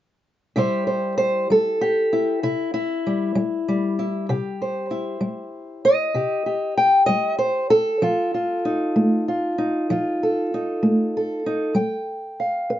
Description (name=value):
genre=acoustic country blues, solo or duo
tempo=64 BPM (dotted quarters)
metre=12/8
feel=straight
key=unclear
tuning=A4 = 441 Hz
part: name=fingerpicked old ladder-braced acoustic guitar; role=solo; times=0.6-12.8 s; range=C3 to G5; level=-19 LUFS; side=equal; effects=none
room=moderate small room reverb, RT60 0.5 s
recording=nothing above 7.6 kHz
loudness=-19 LUFS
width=side -12 dB against mid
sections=0.6-12.8 A section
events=none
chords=0.6 C; 8.0 F7; 11.8 G7(no3)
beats=| 0.56 1.49 2.42 3.36 | 4.29 5.22 6.16 7.09 | 8.02 8.96 9.89 10.83 | 11.76 12.70